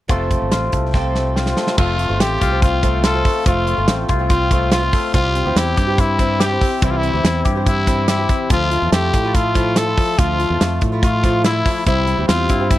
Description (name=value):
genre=jangly indie pop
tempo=143 BPM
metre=4/4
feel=straight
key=F major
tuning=A4 = 439 Hz
part: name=fingerpicked twelve-string acoustic guitar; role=accompaniment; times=0.1-12.8 s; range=F2 to A4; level=-25 LUFS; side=right 4 dB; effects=none
part: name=electric guitar with an envelope filter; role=arpeggios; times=0.1-12.8 s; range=E3 to G4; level=-23 LUFS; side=left 6 dB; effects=none
part: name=fingered electric bass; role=bass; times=0.1-12.8 s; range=F1 to A2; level=-21 LUFS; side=equal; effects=none
part: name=modern studio drum kit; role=drums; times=0.1-12.8 s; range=crash cymbal, hi-hat, kick drum, snare drum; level=-18 LUFS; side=right 1 dB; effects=none
part: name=growling trumpet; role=melody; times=1.4-12.8 s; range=E4 to A4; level=-20 LUFS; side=left 1 dB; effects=none
room=small room ambience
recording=dry, close 1970s-style studio recording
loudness=-14 LUFS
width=side -15 dB against mid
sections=0.1-1.8 A section; 1.8-12.8 B section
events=drum fill 0.9-1.8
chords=0.1 F; 5.1 C; 8.5 Dmadd9; 11.9 C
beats=| 0.10 0.52 0.94 1.36 | 1.78 2.21 2.62 3.04 | 3.46 3.88 4.30 4.72 | 5.14 5.56 5.98 6.40 | 6.82 7.24 7.66 8.08 | 8.50 8.92 9.34 9.76 | 10.18 10.60 11.02 11.44 | 11.86 12.28 12.70